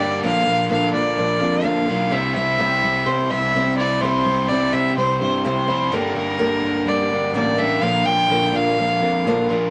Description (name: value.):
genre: rock.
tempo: 126 BPM.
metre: 4/4.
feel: straight.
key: unclear.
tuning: A4 = 440 Hz.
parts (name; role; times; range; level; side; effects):
rich fiddle; melody; 0.0-9.5 s; Bb4 to G5; -23 LUFS; equal; none.
picked old ladder-braced acoustic guitar; accompaniment; 0.0-9.7 s; G2 to C5; -26 LUFS; equal; none.
biting overdriven guitar; riff; 0.0-9.7 s; G2 to G4; -28 LUFS; equal; spring reverb.
picked electric bass; bass; 0.0-9.7 s; F1 to C3; -28 LUFS; equal; none.
room: moderate small room reverb, RT60 0.5 s.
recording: vinyl crackle.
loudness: -19 LUFS.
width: mono.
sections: 0.0-9.7 A section.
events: none.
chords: 0.2 Bb; 2.1 C; 5.9 Gm; 7.8 Bb.